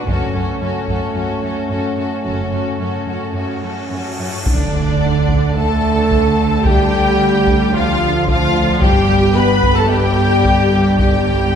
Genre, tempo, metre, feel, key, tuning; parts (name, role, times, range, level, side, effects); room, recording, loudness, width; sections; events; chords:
cinematic, epic orchestral film score; 110 BPM; 4/4; straight; A4 = 440 Hz
rich symphonic violin section; melody; 0.0-11.6 s; A4 to B5; -23 LUFS; left 4 dB
clear symphonic violin section; second line; 0.0-11.6 s; D4 to B4; -24 LUFS; left 3 dB
rich symphonic viola section; accompaniment; 0.0-11.6 s; C#4 to B4; -23 LUFS; right 2 dB
dark French horn section; sustained chords; 0.0-11.6 s; D3 to C#4; -20 LUFS; equal
rich symphonic cello section; bass; 0.1-11.6 s; F#2 to D3; -22 LUFS; right 2 dB
rich symphonic double bass section; bass; 0.1-11.6 s; F#1 to D2; -21 LUFS; right 1 dB
solo taiko drums; drums; 0.1-1.1, 4.5-11.5 s; -20 LUFS; equal
cymbal swell and impact; sound effects; 3.4-6.7 s; -28 LUFS; equal
clear trombone section; sustained chords; 4.4-11.6 s; D3 to B3; -24 LUFS; right 2 dB
wet scoring stage reverb, RT60 1.9 s; heard from further back in the room; -13 LUFS; side -8 dB against mid
0.0-4.5 A section; 4.5-11.6 B section
build-up 0.0-4.5; cymbal swell 3.4-4.5; impact 4.5-6.7
0.1 F#m; 4.5 Dm; 8.8 Gadd9